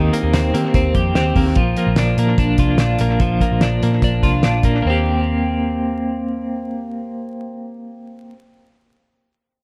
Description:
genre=jangly indie pop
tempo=146 BPM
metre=4/4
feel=straight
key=Eb major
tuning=A4 = 440 Hz
part: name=fingerpicked plugged-in steel-string acoustic guitar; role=accompaniment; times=0.0-1.6 s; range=Eb3 to G4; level=-26 LUFS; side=equal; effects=none
part: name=twelve-string electric guitar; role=arpeggios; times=0.0-8.4 s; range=Eb3 to G4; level=-22 LUFS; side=equal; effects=tremolo, tape echo
part: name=vintage muted picked electric bass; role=bass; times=0.0-8.1 s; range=Bb1 to Eb3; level=-22 LUFS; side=equal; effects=none
part: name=cloth-damped thuddy drum kit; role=drums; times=0.1-4.7 s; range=hi-hat, kick drum, snare drum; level=-22 LUFS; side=equal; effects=tape echo
room=small room ambience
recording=echo-heavy mix, vinyl crackle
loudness=-17 LUFS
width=mono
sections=0.0-4.8 A section; 4.8-8.1 B section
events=none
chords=0.0 Eb6; 1.6 Bb; 4.8 Eb6

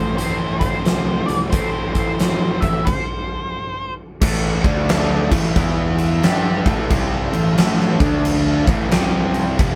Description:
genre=blues rock power trio and southern rock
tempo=89 BPM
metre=4/4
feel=swing 63% on 8ths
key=A minor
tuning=A4 = 439 Hz
part: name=octave-fuzz lead guitar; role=melody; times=0.0-3.9 s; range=C5 to E5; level=-28 LUFS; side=equal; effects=distortion
part: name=overdriven tonewheel organ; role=sustained chords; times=0.0-9.6 s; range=C4 to E5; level=-36 LUFS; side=equal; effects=none
part: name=thick fuzz guitar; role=riff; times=0.0-9.8 s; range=F2 to G4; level=-25 LUFS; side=equal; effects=distortion
part: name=fuzz picked electric bass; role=bass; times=0.0-9.8 s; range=F1 to G2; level=-25 LUFS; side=equal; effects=overdrive
part: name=huge arena drum kit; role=drums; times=0.2-9.8 s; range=crash cymbal, hi-hat, kick drum, snare drum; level=-22 LUFS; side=equal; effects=none
room=light reverb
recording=band playing live in one room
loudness=-19 LUFS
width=mono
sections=0.0-4.2 A section; 4.2-9.8 B section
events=stop 2.9-4.2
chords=0.0 Am; 4.2 A5; 4.6 D5; 5.2 A5; 5.6 E5; 6.2 Am; 7.9 D5; 8.6 A5; 8.9 C5

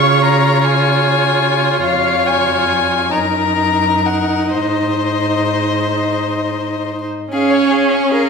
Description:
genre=classical, slow romantic movement for string quartet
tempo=42-51 BPM (dotted quarters)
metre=6/8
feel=rubato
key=Db major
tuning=A4 = 440 Hz
part: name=rich violin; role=melody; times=0.0-8.3 s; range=Eb5 to Db6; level=-18 LUFS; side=left 8 dB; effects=none
part: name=clear violin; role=second line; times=0.0-8.3 s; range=Ab4 to Db5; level=-20 LUFS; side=left 1 dB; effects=none
part: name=rich viola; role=accompaniment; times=0.0-8.3 s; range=Db4 to F4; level=-18 LUFS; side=right 1 dB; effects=none
part: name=rich cello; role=bass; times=0.0-8.3 s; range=F2 to Bb4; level=-19 LUFS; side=right 4 dB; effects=none
room=wet concert hall reverb, RT60 2.0 s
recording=minimal, uncompressed stereo recording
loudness=-13 LUFS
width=side -5 dB against mid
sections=0.0-7.3 A section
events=none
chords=0.0 Db; 1.8 Db/F; 3.1 Ebm/Gb; 4.5 Ab; 7.3 Db

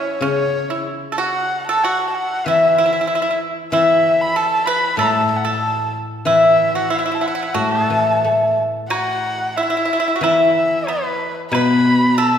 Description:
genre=chinese traditional, Chinese chamber ensemble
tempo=94 BPM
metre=4/4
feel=rubato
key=A gong mode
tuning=A4 = 440 Hz
part: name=dark erhu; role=melody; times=0.0-12.4 s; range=B4 to B5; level=-21 LUFS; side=equal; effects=none
part: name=pipa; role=second line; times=0.0-12.4 s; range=B3 to B4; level=-21 LUFS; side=right 2 dB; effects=none
part: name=guzheng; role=accompaniment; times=0.0-12.4 s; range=A2 to A3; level=-18 LUFS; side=left 2 dB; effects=none
part: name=woodblock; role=percussion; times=8.9-11.7 s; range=none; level=-28 LUFS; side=left 1 dB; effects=none
room=wet scoring stage reverb, RT60 1.9 s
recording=heard from further back in the room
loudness=-15 LUFS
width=side -8 dB against mid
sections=0.0-8.9 A section; 8.9-12.4 B section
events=none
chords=none

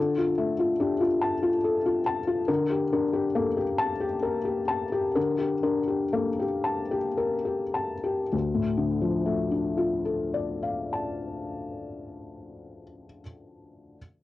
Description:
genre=neoclassical minimalist piano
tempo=52-72 BPM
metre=3/4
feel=rubato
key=D minor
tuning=A4 = 441 Hz
part: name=felt-muted upright piano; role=solo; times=0.0-14.0 s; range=D2 to A5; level=-25 LUFS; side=left 2 dB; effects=cassette tape
room=wet booth ambience, RT60 0.2 s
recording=home recording on cassette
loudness=-24 LUFS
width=side -15 dB against mid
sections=0.0-8.3 A section; 8.3-11.8 B section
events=slowing down 1.2-8.3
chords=0.0 Dm; 2.5 Gmadd9/D; 8.3 Dm

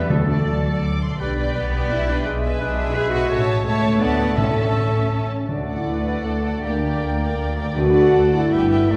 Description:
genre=classical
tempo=154-174 BPM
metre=3/4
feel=rubato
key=D major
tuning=A4 = 441 Hz
part: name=rich symphonic violin section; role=melody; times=0.0-8.9 s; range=F#5 to D6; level=-37 LUFS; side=equal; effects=none
part: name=clear symphonic violin section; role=second line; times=0.0-9.0 s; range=F#4 to F#5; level=-38 LUFS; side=equal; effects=none
part: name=concert flute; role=second line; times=0.0-9.0 s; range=D5 to A5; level=-35 LUFS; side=equal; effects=none
part: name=warm oboe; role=second line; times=0.0-9.0 s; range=A4 to E5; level=-33 LUFS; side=equal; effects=none
part: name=clear studio viola section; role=accompaniment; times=0.0-8.9 s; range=A4 to E5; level=-35 LUFS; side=equal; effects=none
part: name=warm bassoon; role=accompaniment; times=0.0-9.0 s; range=G3 to B3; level=-32 LUFS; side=equal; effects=none
part: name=warm French horn section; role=sustained chords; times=0.0-9.0 s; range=A3 to E5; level=-26 LUFS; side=equal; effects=none
part: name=concert harp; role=arpeggios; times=0.0-9.0 s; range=G2 to A4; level=-33 LUFS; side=equal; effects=none
part: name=rich symphonic cello section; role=bass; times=0.0-9.0 s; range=D2 to G#4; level=-28 LUFS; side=equal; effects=none
part: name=warm chamber double bass section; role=bass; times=0.0-9.0 s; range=G1 to D2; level=-27 LUFS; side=equal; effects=none
part: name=timpani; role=percussion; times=0.1-0.6, 4.4-8.3 s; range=A2 to D3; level=-28 LUFS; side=equal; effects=none
room=wet concert hall reverb, RT60 2.0 s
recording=heard from further back in the room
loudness=-20 LUFS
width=mono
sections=0.0-5.5 A section; 5.5-9.0 B section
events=none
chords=0.1 D; 1.2 G/B; 2.3 E7/B; 3.3 A; 4.0 D; 4.4 A; 5.5 D; 6.6 Gm/D; 7.8 D; 8.5 Em/G

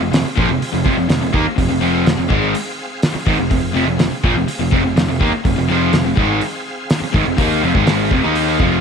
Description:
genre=classic rock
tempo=124 BPM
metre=4/4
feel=straight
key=F minor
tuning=A4 = 440 Hz
part: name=bright tonewheel organ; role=sustained chords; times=0.0-8.8 s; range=C4 to F5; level=-28 LUFS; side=equal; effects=overdrive, chorus vibrato, fast rotary speaker
part: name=distorted electric guitar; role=riff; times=0.0-8.8 s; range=F2 to Eb4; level=-19 LUFS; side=right 14 dB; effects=distortion
part: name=raw garage guitar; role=riff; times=0.0-8.8 s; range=F2 to Eb4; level=-20 LUFS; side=left 14 dB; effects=overdrive
part: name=picked electric bass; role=bass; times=0.0-8.8 s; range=F1 to Eb2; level=-22 LUFS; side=equal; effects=none
part: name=cloth-damped thuddy drum kit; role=drums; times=0.1-8.7 s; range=hi-hat, kick drum, snare drum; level=-19 LUFS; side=equal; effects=none
room=light reverb, small room ambience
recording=1960s-style stereo with parts hard left and right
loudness=-14 LUFS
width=side -6 dB against mid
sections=0.0-8.8 A section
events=none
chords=0.0 Fm

